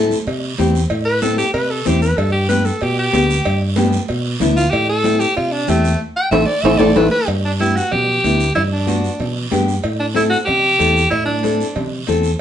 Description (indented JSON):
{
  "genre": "latin, cumbia",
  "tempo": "188 BPM",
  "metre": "4/4",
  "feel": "straight",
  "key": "unclear",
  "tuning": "A4 = 436 Hz",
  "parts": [
    { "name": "nylon-string guitar", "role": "accompaniment", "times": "0.0-12.3 s", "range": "B3 to C5", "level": "-18 LUFS", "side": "left 5 dB", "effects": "none" },
    { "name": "fingered electric bass", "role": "bass", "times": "0.0-12.3 s", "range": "A1 to C3", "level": "-20 LUFS", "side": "right 1 dB", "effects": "none" },
    { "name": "congas", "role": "percussion", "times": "0.1-12.2 s", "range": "none", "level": "-24 LUFS", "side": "right 3 dB", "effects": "none" },
    { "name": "guiro", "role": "percussion", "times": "0.1-12.4 s", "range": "none", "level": "-30 LUFS", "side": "right 6 dB", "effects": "none" },
    { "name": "cowbell and timbales", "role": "percussion", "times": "0.3-12.2 s", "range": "none", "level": "-25 LUFS", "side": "right 3 dB", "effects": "none" },
    { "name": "breathy alto saxophone", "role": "melody", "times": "1.0-11.9 s", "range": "A3 to G5", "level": "-17 LUFS", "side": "equal", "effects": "none" }
  ],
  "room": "wet studio reverb, RT60 0.6 s",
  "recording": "band playing live in one room, nothing above 10.5 kHz",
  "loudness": "-14 LUFS",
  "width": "side -10 dB against mid",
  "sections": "0.0-7.3 A section; 7.3-12.4 B section",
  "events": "alto saxophone solo 0.0-7.3; band accent 6.0-7.3; drum fill 6.6-7.3",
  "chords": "0.0 Am; 2.2 G; 4.7 Am; 7.3 G; 9.8 Am",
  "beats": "0.27 0.58 | 0.91 1.22 1.54 1.86 | 2.18 2.50 2.82 3.14 | 3.46 3.78 4.09 4.41 | 4.73 5.05 5.37 5.69 | 6.01 6.33 6.65 6.96 | 7.29 7.60 7.92 8.24 | 8.56 8.88 9.20 9.52 | 9.84 10.16 10.48 10.80 | 11.12 11.44 11.76 12.08"
}